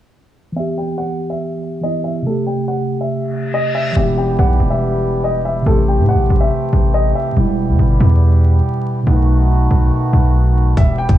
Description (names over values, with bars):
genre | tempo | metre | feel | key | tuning
hip hop, drill | 141 BPM | 4/4 | half-time | E harmonic minor | A4 = 441 Hz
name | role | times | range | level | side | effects
mellow tine electric piano | accompaniment | 0.5-10.8 s | B2 to G4 | -19 LUFS | right 1 dB | medium stereo tremolo, low-pass filter
warm upright piano | melody | 0.6-7.3, 10.8-11.1 s | A4 to G5 | -22 LUFS | left 1 dB | low-pass filter, digital delay
reverse cymbal | sound effects | 3.3-4.0 s | none | -27 LUFS | left 4 dB | none
mellow accordion | sustained chords | 4.0-11.2 s | D#3 to G4 | -24 LUFS | equal | none
hard-hitting 808-style bass | bass | 4.0-11.2 s | E1 to A2 | -13 LUFS | equal | none
drill drum kit | drums | 10.8-11.2 s | hi-hat, kick drum | -12 LUFS | equal | none
room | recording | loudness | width
little or no reverb | vinyl crackle, low-pass filter, studio ambience | -13 LUFS | side -13 dB against mid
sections
0.6-4.0 A section; 4.0-11.2 B section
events
filter sweep 0.6-4.0, 4.0-10.8; reverse cymbal 3.3-4.0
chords
0.6 Em; 2.3 Am7; 4.0 Em; 5.7 Am7; 7.4 Em; 9.1 B7